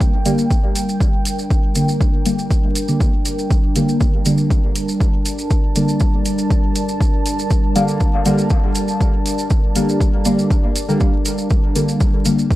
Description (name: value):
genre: dub techno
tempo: 120 BPM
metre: 4/4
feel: straight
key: G minor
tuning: A4 = 441 Hz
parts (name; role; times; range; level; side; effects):
- deep dark ambient pad; sustained chords; 0.0-12.6 s; G3 to A5; -23 LUFS; equal; chorus, built-in reverb, sidechain pumping
- deep mellow chord stab; stabs; 0.0-12.5 s; D3 to Bb3; -20 LUFS; equal; chorus, phaser, sidechain pumping, dub echo
- electronic kick drum; drums; 0.0-12.6 s; none; -17 LUFS; equal; studio reverb
- maracas; percussion; 0.0-12.6 s; none; -28 LUFS; right 2 dB; none
- electronic hi-hat; drums; 0.3-12.4 s; none; -29 LUFS; left 1 dB; studio reverb
room: light reverb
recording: vinyl crackle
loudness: -15 LUFS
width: side -16 dB against mid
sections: 0.0-12.6 A section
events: none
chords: 0.0 Gm